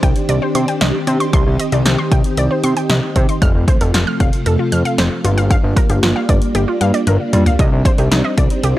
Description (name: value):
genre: synth-pop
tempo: 115 BPM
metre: 4/4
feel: straight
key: C minor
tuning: A4 = 440 Hz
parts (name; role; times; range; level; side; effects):
- ensemble organ-string; sustained chords; 0.0-8.8 s; C3 to G4; -20 LUFS; equal; ensemble chorus
- analog pluck; arpeggios; 0.0-8.8 s; Eb4 to F6; -22 LUFS; equal; chorus, analog delay
- fat analog bass; bass; 0.0-8.7 s; F1 to C3; -16 LUFS; equal; none
- punchy analog drum machine; drums; 0.0-8.8 s; hi-hat, kick drum, snare drum, toms; -16 LUFS; equal; none
room: little or no reverb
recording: dry, gritty hardware recording, transformer saturation, cassette tape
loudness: -13 LUFS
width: side -15 dB against mid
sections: 0.0-8.8 A section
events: drum fill 7.1-7.6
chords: 0.0 Cmadd9; 3.4 F; 5.2 Gm7; 7.6 Cmadd9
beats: 0.29 0.81 | 1.33 1.85 2.38 2.90 | 3.42 3.94 4.46 4.98 | 5.51 6.03 6.55 7.07 | 7.59 8.12 8.64